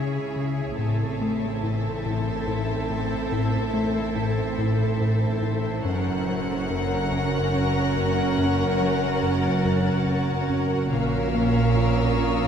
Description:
cinematic; 71 BPM; 3/4; straight; A4 = 440 Hz
warm studio violin section; melody; 0.0-12.5 s; E5 to F#5; -34 LUFS; left 5 dB
warm symphonic violin section; second line; 0.0-12.5 s; G#4 to A#4; -30 LUFS; left 1 dB
rich studio viola section; accompaniment; 0.0-12.5 s; C4 to C#4; -30 LUFS; right 4 dB
shimmering ambient pad; sustained chords; 0.0-12.5 s; E4 to C#5; -33 LUFS; equal; chorus, built-in reverb
rubbery square bass; riff; 0.0-12.4 s; F#2 to A#3; -28 LUFS; left 3 dB
warm symphonic cello section; bass; 0.0-12.5 s; F#2 to C#3; -30 LUFS; right 2 dB
warm symphonic double bass section; bass; 0.0-12.5 s; F#1 to C#2; -29 LUFS; right 3 dB
metallic inharmonic drone; drone; 0.0-12.5 s; F#1 to C#2; -33 LUFS; equal; chorus, built-in reverb, phaser
warm symphonic violin section; texture; 0.0-0.3, 5.8-12.5 s; C#6 to C#7; -36 LUFS; left 4 dB
wet scoring stage reverb, RT60 1.5 s; -21 LUFS; side -8 dB against mid
0.0-12.5 A section
0.0 C#m; 0.8 Am; 5.8 F#; 10.9 A#m

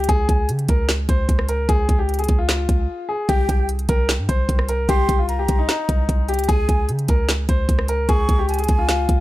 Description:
hip hop, trap; 150 BPM; 4/4; half-time; A4 = 441 Hz
clear grand piano; melody; 0.0-9.2 s; Eb4 to C5; -23 LUFS; left 2 dB; low-pass filter, tape echo
warm 808-style bass; bass; 0.0-9.2 s; C2 to Db3; -21 LUFS; equal
trap drum kit; drums; 0.0-9.2 s; handclaps, hi-hat, kick drum, rim click, snare drum; -20 LUFS; equal
breathy mellow silver concert flute; second line; 3.3-9.2 s; G5 to Db6; -29 LUFS; right 3 dB; tape echo
studio ambience; dry, gritty hardware recording; -17 LUFS; side -16 dB against mid
0.0-9.2 A section
break 2.9-3.3
0.1 Db; 3.3 Cm; 6.5 Db5

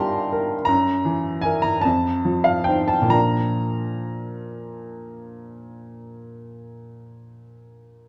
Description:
classical, romantic nocturne for solo piano; 41-57 BPM (dotted quarters); 12/8; rubato; Bb major; A4 = 440 Hz
clear upright piano; solo; 0.0-8.1 s; F2 to C6; -23 LUFS; equal
moderate recital hall reverb, RT60 1.6 s; worn, warbling old tape, cassette tape, warbly pitch drift; -21 LUFS; mono
0.0-8.1 A section
0.0 Eb/G; 0.7 Gb7; 1.8 F7; 3.1 Bb

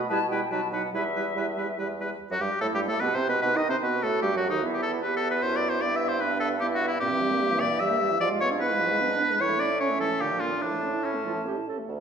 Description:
quick classical-period movement for wind quintet; 149 BPM; 3/4; rubato; E minor; A4 = 440 Hz
warm bassoon; bass; 0.0-12.0 s; D2 to D#3; -32 LUFS; right 3 dB
silver concert flute; melody; 0.1-11.7 s; D#4 to A5; -35 LUFS; left 5 dB
bright oboe; second line; 0.1-11.5 s; C#4 to E5; -27 LUFS; left 2 dB
clear clarinet; accompaniment; 0.1-11.8 s; Bb3 to A4; -32 LUFS; right 8 dB
mellow French horn; accompaniment; 0.1-11.9 s; Bb2 to E4; -33 LUFS; right 2 dB
wet recital hall reverb, RT60 1.7 s; minimal, uncompressed stereo recording; -24 LUFS; side -7 dB against mid
0.0-2.2 A section; 2.2-11.9 A section
0.1 Em/B; 0.5 B7; 0.9 Em; 3.4 B7; 4.6 Em; 5.8 Em/G; 7.0 Edim/G; 8.2 G#dim7; 9.4 A; 10.2 Bb; 10.6 A

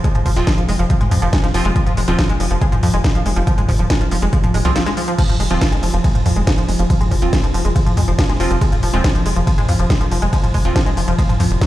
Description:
driving peak-time techno; 140 BPM; 4/4; straight; F minor; A4 = 440 Hz
tight sequenced synth; riff; 0.0-11.7 s; F3 to Ab3; -22 LUFS; equal; chorus, tube saturation, sidechain pumping, ping-pong delay
metallic inharmonic drone; drone; 0.0-11.7 s; F3; -26 LUFS; left 1 dB; chorus, built-in reverb, sidechain pumping
electronic kick drum; drums; 0.0-11.7 s; -16 LUFS; equal; overdrive
techno drum kit; drums; 0.0-11.7 s; crash cymbal, hi-hat, ride cymbal, snare drum, toms; -23 LUFS; equal; overdrive, sidechain pumping on hats, sidechain pumping on toms, sidechain pumping on cymbals
tight sequencer bass; bass; 0.3-11.6 s; Eb1 to F2; -18 LUFS; equal; tube saturation, sidechain pumping
wavetable chord stab; stabs; 0.4-10.8 s; F3 to F4; -26 LUFS; right 2 dB; phaser, sidechain pumping, ping-pong delay
digital ambience; played on a big sound system in a bare room, large studio reverb; -14 LUFS; side -15 dB against mid
0.0-11.7 A section
break 4.8-5.2
0.0 F5

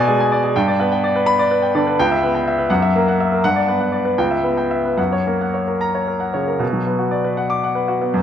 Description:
classical, romantic character piece for solo piano; 72-84 BPM (dotted quarters); 6/8; rubato; B minor; A4 = 440 Hz
bright grand piano; solo; 0.0-8.2 s; C#2 to D6; -16 LUFS; equal
moderate recital hall reverb, RT60 1.5 s; -16 LUFS; side -9 dB against mid
0.0-6.6 A section; 6.6-8.2 B section
0.0 G#dim/B; 0.5 G; 2.0 C#m7b5; 2.7 F#7; 3.4 Gmaj7; 4.2 C#m7b5; 5.0 F#; 6.6 Bm

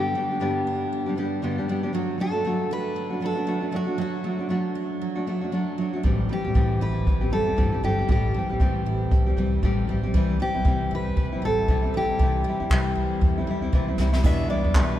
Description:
acoustic pop; 117 BPM; 4/4; swing 60% on 16ths; A4 = 435 Hz
picked steel-string acoustic guitar; melody; 0.0-15.0 s; F#4 to E5; -29 LUFS; equal
nylon-string guitar; accompaniment; 0.0-15.0 s; E2 to G4; -26 LUFS; left 1 dB
picked steel-string acoustic guitar; arpeggios; 0.0-15.0 s; F#3 to G4; -35 LUFS; right 6 dB
upright bass; bass; 6.0-15.0 s; F#1 to C3; -27 LUFS; equal
jazz brush drum kit; drums; 6.0-14.9 s; crash cymbal, handclaps, kick drum, snare drum; -24 LUFS; equal
warm upright piano; accompaniment; 14.2-15.0 s; B3 to D5; -34 LUFS; left 3 dB
wet cathedral reverb, RT60 5.6 s; recorded in a church or concert hall; -22 LUFS; side -12 dB against mid
0.0-14.2 A section
drum fill 13.7-14.2
0.0 G; 1.9 D/F#; 6.0 Am7; 10.1 C; 14.2 Em7

